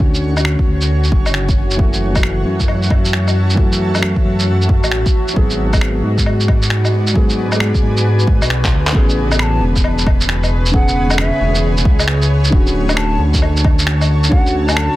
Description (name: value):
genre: future garage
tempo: 134 BPM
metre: 4/4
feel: swing 64% on 16ths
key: unclear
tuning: A4 = 444 Hz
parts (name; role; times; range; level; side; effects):
- felt-muted upright piano; accompaniment; 0.0-15.0 s; C#3 to G#4; -22 LUFS; equal; sidechain pumping, tape echo
- granular cloud pad; sustained chords; 0.0-15.0 s; F#4 to A5; -24 LUFS; equal; built-in reverb, vintage 12-bit sampler grit, sidechain pumping
- dark detuned saw bass; bass; 0.0-14.9 s; D1 to G#2; -16 LUFS; equal; sidechain pumping
- electronic kick drum; drums; 0.0-14.4 s; none; -14 LUFS; equal; overdrive
- electronic shaker, woodblock, finger snaps and handclaps; drums; 0.1-14.9 s; none; -20 LUFS; equal; soft clipping on snare
- hollow wooden flute; melody; 9.4-15.0 s; E5 to B5; -23 LUFS; equal; vintage 12-bit sampler grit, tape echo
room: little or no reverb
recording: dense, heavily limited modern master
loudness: -12 LUFS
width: side -16 dB against mid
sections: 0.0-8.9 A section; 8.9-15.0 B section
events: drum fill 8.6-8.9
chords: 0.0 Dmaj7; 1.8 F#m7; 5.4 G#m7b5; 8.9 Amaj9; 12.5 Dmaj7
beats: 0.44 0.89 1.33 | 1.78 2.23 2.68 3.13 | 3.57 4.02 4.47 4.92 | 5.37 5.81 6.26 6.71 | 7.16 7.60 8.05 8.50 | 8.95 9.39 9.84 10.29 | 10.74 11.19 11.63 12.08 | 12.53 12.98 13.43 13.87 | 14.32 14.77